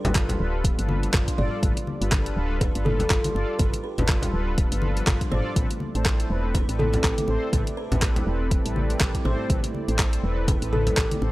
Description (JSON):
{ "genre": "afro house", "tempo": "122 BPM", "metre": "4/4", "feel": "swing 57% on 16ths", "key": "A minor", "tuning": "A4 = 440 Hz", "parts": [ { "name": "buzzing kalimba", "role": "melody", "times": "0.0-11.3 s", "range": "A4 to D5", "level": "-32 LUFS", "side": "equal", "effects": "tape echo" }, { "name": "dark analog pad", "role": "sustained chords", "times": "0.0-11.3 s", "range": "G3 to D5", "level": "-36 LUFS", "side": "right 1 dB", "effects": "chorus, sidechain pumping" }, { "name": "mellow synth brass", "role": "stabs", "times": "0.0-11.3 s", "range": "C4 to D5", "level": "-34 LUFS", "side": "left 1 dB", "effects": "chorus, sidechain pumping, tape echo" }, { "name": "deep house drum kit", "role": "drums", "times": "0.0-11.2 s", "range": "handclaps, hi-hat, rim click, toms", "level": "-28 LUFS", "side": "equal", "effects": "none" }, { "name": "congas", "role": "percussion", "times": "0.0-11.3 s", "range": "none", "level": "-30 LUFS", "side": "left 1 dB", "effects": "none" }, { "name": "woody FM bass", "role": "bass", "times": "0.1-11.3 s", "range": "D1 to A1", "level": "-26 LUFS", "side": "equal", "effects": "sidechain pumping" }, { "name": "handpan", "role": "arpeggios", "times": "0.2-11.2 s", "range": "F3 to A4", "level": "-34 LUFS", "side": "right 2 dB", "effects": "sidechain pumping, tape echo" }, { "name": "electronic kick drum", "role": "drums", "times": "0.2-11.1 s", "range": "none", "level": "-24 LUFS", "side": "equal", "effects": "none" } ], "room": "little or no reverb", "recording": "dry, gritty hardware recording", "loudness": "-21 LUFS", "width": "side -18 dB against mid", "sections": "0.0-11.3 A section", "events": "none", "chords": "0.0 G7; 5.6 Amadd9", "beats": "0.15 0.64 1.14 | 1.63 2.12 2.61 3.10 | 3.60 4.09 4.58 5.07 | 5.56 6.05 6.55 7.04 | 7.53 8.02 8.51 9.01 | 9.50 9.99 10.48 10.97" }